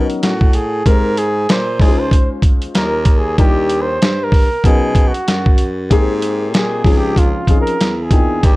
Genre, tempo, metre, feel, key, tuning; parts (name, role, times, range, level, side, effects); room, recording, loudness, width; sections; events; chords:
hip hop, jazz-hop; 95 BPM; 4/4; swing 59% on 16ths; A4 = 445 Hz
dark upright piano; accompaniment; 0.0-8.6 s; F3 to G5; -20 LUFS; left 4 dB
warm baritone saxophone; bass; 0.0-8.6 s; Db2 to Cb3; -21 LUFS; equal
dusty soul sampler-style drum kit; drums; 0.1-8.6 s; hi-hat, kick drum, snare drum; -12 LUFS; equal
mellow flugelhorn; melody; 0.2-8.6 s; F4 to C5; -19 LUFS; right 1 dB; slapback echo
small room reverb; dark, warm production; -12 LUFS; side -20 dB against mid
0.0-8.6 A section
flugelhorn solo 0.0-8.6
0.0 Bmaj9; 0.9 Abmaj9; 1.8 Dbmaj9; 3.4 Ebmaj9; 4.6 Bmaj9; 5.9 Abmaj9; 6.9 Dbmaj9